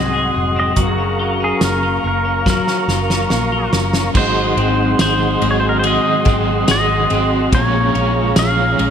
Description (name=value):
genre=dream pop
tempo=71 BPM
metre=4/4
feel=straight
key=Ab mixolydian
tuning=A4 = 440 Hz
part: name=pedal steel guitar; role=melody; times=0.0-8.9 s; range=Gb4 to F5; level=-20 LUFS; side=equal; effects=ping-pong delay
part: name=mellow tonewheel organ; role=sustained chords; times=0.0-8.9 s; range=Ab4 to Db6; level=-22 LUFS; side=right 2 dB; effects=chorus vibrato, lush chorus
part: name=twelve-string electric guitar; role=arpeggios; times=0.0-8.9 s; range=Ab2 to Ab4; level=-21 LUFS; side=left 3 dB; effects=wide subtle chorus, ping-pong delay
part: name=vintage muted fingered electric bass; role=bass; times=0.0-8.9 s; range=F1 to C2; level=-21 LUFS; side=equal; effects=none
part: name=loose indie drum kit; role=drums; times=0.8-8.9 s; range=crash cymbal, hi-hat, kick drum, ride cymbal, snare drum, tambourine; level=-20 LUFS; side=equal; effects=gated reverb
part: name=vibraphone with hard mallets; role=texture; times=0.9-8.9 s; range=Db4 to Ab4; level=-28 LUFS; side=left 3 dB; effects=ping-pong delay
part: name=overdriven semi-hollow guitar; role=accompaniment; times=4.1-8.9 s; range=Ab2 to Gb4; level=-21 LUFS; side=right 3 dB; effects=tremolo, analog chorus
room=moderate lush hall reverb, RT60 3.2 s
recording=bright 1980s-style digital production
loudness=-13 LUFS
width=side -8 dB against mid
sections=0.0-4.1 A section; 4.1-8.9 B section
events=drum fill 2.5-4.1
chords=0.0 Ab7; 0.8 Gbmaj7; 4.1 Ab7; 7.5 Bbm7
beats=| 0.77 1.61 2.46 3.30 | 4.15 4.99 5.84 6.68 | 7.53 8.37